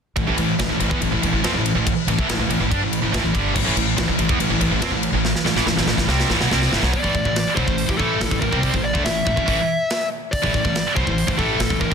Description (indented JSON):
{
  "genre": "heavy metal",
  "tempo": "142 BPM",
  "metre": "4/4",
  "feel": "straight",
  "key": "A minor",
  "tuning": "A4 = 439 Hz",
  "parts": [
    { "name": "heavy high-gain guitar", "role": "riff", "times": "0.2-11.9 s", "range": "G2 to D4", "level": "-24 LUFS", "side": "right 13 dB", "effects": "distortion" },
    { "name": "scooped high-gain guitar", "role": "riff", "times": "0.2-11.9 s", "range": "G2 to D4", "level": "-24 LUFS", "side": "left 13 dB", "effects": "distortion" },
    { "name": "thick fuzz guitar", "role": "riff", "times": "0.2-6.9 s", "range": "G2 to D4", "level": "-26 LUFS", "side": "right 1 dB", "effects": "distortion" },
    { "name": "upright bass", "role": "bass", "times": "0.2-11.9 s", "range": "G1 to G2", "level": "-25 LUFS", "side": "equal", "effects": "none" },
    { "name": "tight metal drum kit", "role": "drums", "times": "0.2-11.9 s", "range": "crash cymbal, hi-hat, kick drum, ride cymbal, snare drum", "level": "-24 LUFS", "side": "equal", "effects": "soft clipping on kick" },
    { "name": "high-gain lead guitar", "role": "melody", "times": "6.9-11.9 s", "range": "G4 to E5", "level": "-23 LUFS", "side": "left 2 dB", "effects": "distortion" }
  ],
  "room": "light reverb",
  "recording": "dense, heavily limited modern master",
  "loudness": "-17 LUFS",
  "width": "side -6 dB against mid",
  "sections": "0.2-6.9 A section; 6.9-11.9 B section",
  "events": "drum fill 5.2-6.9",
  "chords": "0.2 Am"
}